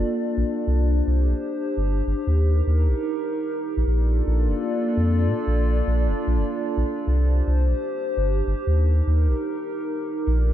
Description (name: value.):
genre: IDM.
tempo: 150 BPM.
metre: 4/4.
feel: straight.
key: unclear.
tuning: A4 = 440 Hz.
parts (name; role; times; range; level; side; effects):
warbly tape-like pad; sustained chords; 0.0-10.5 s; Bb3 to D5; -25 LUFS; equal; chorus, built-in reverb.
warm sub bass; bass; 0.0-10.5 s; F1 to Bb2; -20 LUFS; equal; none.
room: light reverb.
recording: dark, warm production.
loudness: -20 LUFS.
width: side -11 dB against mid.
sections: 0.0-10.3 A section.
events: break 9.5-10.3.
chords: 0.0 Bbmaj7; 0.7 Csus2; 2.3 Eb; 3.9 Bbmaj7; 7.1 Csus2; 8.7 Eb.